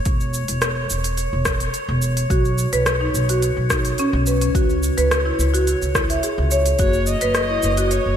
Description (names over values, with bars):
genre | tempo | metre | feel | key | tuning
organic downtempo | 107 BPM | 4/4 | straight | unclear | A4 = 440 Hz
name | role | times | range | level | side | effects
drifting glass-harmonics texture | texture | 0.0-8.2 s | C#5 | -29 LUFS | right 2 dB | chorus, built-in reverb
upright bass | bass | 0.1-8.2 s | E1 to C#2 | -21 LUFS | equal | tube saturation, sidechain pumping
electronic kick drum | drums | 0.1-6.9 s | none | -22 LUFS | equal | none
organic electronic drum kit | drums | 0.1-8.0 s | hi-hat, rim click, shaker | -25 LUFS | equal | none
marimba with medium mallets | arpeggios | 2.3-7.9 s | C#4 to E5 | -21 LUFS | equal | ping-pong delay, slapback echo
dark kamancheh | melody | 6.8-8.2 s | C#5 to D#5 | -23 LUFS | left 1 dB | ping-pong delay, slapback echo
room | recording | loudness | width
moderate lush hall reverb, RT60 2.8 s | big arena sound | -17 LUFS | side -9 dB against mid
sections
0.0-8.2 A section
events
none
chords
0.1 C#m/E; 2.3 N.C.; 4.5 C#m; 6.8 F#5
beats
| 0.06 0.62 1.19 1.75 | 2.31 2.87 3.43 3.99 | 4.55 5.11 5.67 6.23 | 6.79 7.35 7.91